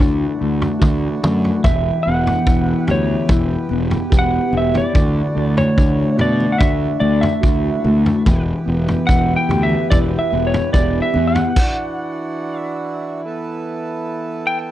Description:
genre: psychedelic rock.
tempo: 73 BPM.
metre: 4/4.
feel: straight.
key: E minor.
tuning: A4 = 440 Hz.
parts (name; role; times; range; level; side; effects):
pedal harmonium; sustained chords; 0.0-14.7 s; E3 to A4; -27 LUFS; right 3 dB; none.
mellow electric guitar; riff; 0.0-11.6 s; D3 to G4; -19 LUFS; left 2 dB; phaser.
fuzz fingered electric bass; bass; 0.0-11.4 s; E1 to B2; -20 LUFS; equal; overdrive.
vintage drum kit; drums; 0.6-11.8 s; crash cymbal, kick drum, toms; -18 LUFS; equal; none.
electric slide guitar; melody; 1.6-14.6 s; C#5 to G5; -21 LUFS; right 1 dB; slapback echo.
congas; percussion; 2.9-11.5 s; none; -28 LUFS; right 2 dB; none.
room: little or no reverb.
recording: dry, close 1970s-style studio recording.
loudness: -15 LUFS.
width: side -13 dB against mid.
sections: 0.0-14.7 A section.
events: electric slide guitar solo 0.0-14.7; stop 11.6-14.7.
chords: 0.0 Dadd9; 1.6 Em; 4.9 Dadd9; 8.3 Em; 11.6 Dadd9; 13.2 Asus2.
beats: 0.81 | 1.64 2.47 3.29 4.12 | 4.95 5.78 6.60 7.43 | 8.26 9.08 9.91 10.73 | 11.56 12.39 13.21 14.04.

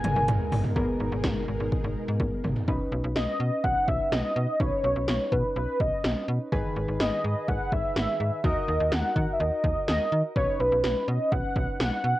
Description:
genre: synth-pop.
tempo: 125 BPM.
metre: 4/4.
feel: straight.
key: G# minor.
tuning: A4 = 440 Hz.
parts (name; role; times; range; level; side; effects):
warm velvety synth lead; melody; 0.0-12.2 s; B4 to G#5; -27 LUFS; equal; chorus, cassette tape, plate reverb.
warm analog keys; accompaniment; 0.0-12.2 s; D#3 to B4; -34 LUFS; equal; chorus, cassette tape, plate reverb.
string machine, violas; sustained chords; 0.0-2.7 s; B2 to A#4; -35 LUFS; equal; ensemble chorus, cassette tape, plate reverb.
slap-like FM bass; bass; 0.0-12.1 s; G#1 to D#3; -29 LUFS; equal; none.
80s electronic pad drums; drums; 0.0-11.9 s; hi-hat, kick drum, snare drum, toms; -28 LUFS; equal; gated reverb on snare and toms.
room: moderate booth ambience, RT60 0.2 s.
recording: home recording on cassette.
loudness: -24 LUFS.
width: side -16 dB against mid.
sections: 0.8-2.7 A section; 2.7-12.2 B section.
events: drum fill 0.0-0.8, 2.2-2.7.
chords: 0.0 G#madd9; 2.7 Badd9; 6.5 G#m; 8.4 D#m; 10.4 Badd9.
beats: 0.28 | 0.76 1.24 1.72 2.20 | 2.68 3.16 3.64 4.12 | 4.60 5.08 5.56 6.04 | 6.52 7.00 7.48 7.96 | 8.44 8.92 9.40 9.88 | 10.36 10.84 11.32 11.80.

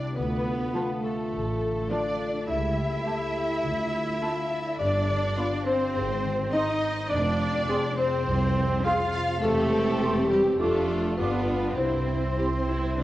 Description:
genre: cinematic, playful, whimsical film cue.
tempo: 103 BPM.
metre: 4/4.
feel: straight.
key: unclear.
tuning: A4 = 440 Hz.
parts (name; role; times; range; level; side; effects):
marimba with medium mallets; melody; 0.0-13.0 s; G4 to F5; -30 LUFS; left 2 dB; none.
rich studio violin section; melody; 0.0-13.0 s; G4 to F5; -35 LUFS; left 2 dB; none.
dark cor anglais; second line; 0.0-13.0 s; G3 to F4; -33 LUFS; right 1 dB; none.
rich studio violin section; second line; 0.0-13.0 s; G4 to F5; -34 LUFS; left 1 dB; none.
mellow French horn section; sustained chords; 0.0-13.0 s; G3 to Ab4; -34 LUFS; left 1 dB; none.
concert harp; arpeggios; 0.0-13.0 s; E2 to C5; -33 LUFS; left 3 dB; none.
warm studio cello section; bass; 0.0-13.0 s; G3 to F4; -34 LUFS; right 2 dB; none.
rich studio double bass section; bass; 0.2-13.0 s; E1 to D2; -32 LUFS; right 2 dB; none.
dark clarinet; second line; 0.7-12.5 s; Eb4 to Ab4; -38 LUFS; left 1 dB; none.
mellow hollow small flute group; second line; 0.7-12.5 s; A5 to D6; -38 LUFS; right 2 dB; none.
rich studio viola section; accompaniment; 0.7-13.0 s; F3 to Ab4; -32 LUFS; right 1 dB; none.
room: moderate scoring stage reverb, RT60 1.7 s.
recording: worn, warbling old tape, cassette tape, warbly pitch drift.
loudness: -24 LUFS.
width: side -15 dB against mid.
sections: 0.0-13.0 A section.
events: none.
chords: 0.2 Dm; 2.5 A7/C#; 3.6 Dm; 4.8 G7; 6.0 Ab; 7.1 Fm; 9.4 C/E; 10.6 Dm/F; 11.2 G7; 11.8 C.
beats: | 0.16 0.74 1.32 1.90 | 2.48 3.06 3.64 4.21 | 4.79 5.37 5.95 6.53 | 7.11 7.69 8.27 8.85 | 9.43 10.02 10.60 11.19 | 11.78 12.37 12.97.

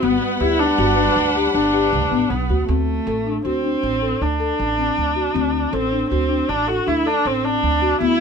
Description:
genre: contemporary instrumental, chamber music in an uneven meter.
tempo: 158 BPM.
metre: 7/4.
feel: straight.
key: D mixolydian.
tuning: A4 = 443 Hz.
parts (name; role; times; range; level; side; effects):
dark viola; second line; 0.0-8.2 s; A3 to F#4; -20 LUFS; right 2 dB; none.
dark studio string section; sustained chords; 0.0-2.7 s; G3 to F#5; -23 LUFS; right 1 dB; none.
marimba with soft mallets; arpeggios; 0.0-8.2 s; B3 to A4; -21 LUFS; left 6 dB; none.
upright bass; bass; 0.0-8.2 s; G1 to D2; -24 LUFS; right 2 dB; none.
room: little or no reverb.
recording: close, detailed microphones.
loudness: -17 LUFS.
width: side -6 dB against mid.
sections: 0.0-2.7 A section; 2.7-8.2 B section.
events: none.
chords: 0.0 Gmaj7; 2.7 D7.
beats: | 0.02 0.40 0.79 1.17 1.55 1.93 2.31 | 2.69 3.07 3.45 3.83 4.21 4.59 4.97 | 5.35 5.73 6.11 6.49 6.87 7.25 7.63 | 8.01.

